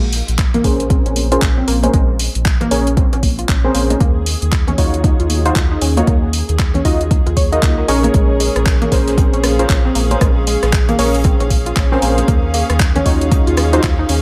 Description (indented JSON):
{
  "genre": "deep house",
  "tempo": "116 BPM",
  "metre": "4/4",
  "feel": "swing 61% on 16ths",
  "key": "Bb minor",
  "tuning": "A4 = 440 Hz",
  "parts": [
    { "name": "round analog bass", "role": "bass", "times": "0.0-14.2 s", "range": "Bb1 to Eb2", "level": "-21 LUFS", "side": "equal", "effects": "sidechain pumping" },
    { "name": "deep house drum kit", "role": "drums", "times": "0.1-14.2 s", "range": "handclaps, hi-hat, rim click", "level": "-25 LUFS", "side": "equal", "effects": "overdrive" },
    { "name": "electronic kick drum", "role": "drums", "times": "0.4-14.0 s", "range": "none", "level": "-17 LUFS", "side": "equal", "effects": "overdrive" },
    { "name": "warbly dusty pluck", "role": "arpeggios", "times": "0.5-14.2 s", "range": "Ab3 to Db5", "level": "-24 LUFS", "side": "equal", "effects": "chorus, sidechain pumping, dub echo" },
    { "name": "congas and bongos", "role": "percussion", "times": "0.5-13.7 s", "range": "none", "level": "-28 LUFS", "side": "equal", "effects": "none" },
    { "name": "warm analog keys", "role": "stabs", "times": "0.6-13.8 s", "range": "Db4 to Eb5", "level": "-21 LUFS", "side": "equal", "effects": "chorus, sidechain pumping, low-pass filter, digital delay" },
    { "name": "dark chamber string section", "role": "texture", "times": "4.0-14.2 s", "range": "Db4 to F5", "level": "-26 LUFS", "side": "equal", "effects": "sidechain pumping" },
    { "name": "crisp fusion drum kit", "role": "drums", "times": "8.1-14.2 s", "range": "hi-hat, snare drum", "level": "-36 LUFS", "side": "equal", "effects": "none" }
  ],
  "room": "light reverb, studio reverb",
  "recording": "none",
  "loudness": "-15 LUFS",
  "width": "mono",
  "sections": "0.0-14.2 A section",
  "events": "filter sweep on synth keys 0.0-14.2",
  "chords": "0.0 Bbm9; 4.0 Ebm9; 8.1 Bbm9; 12.3 Ebm9"
}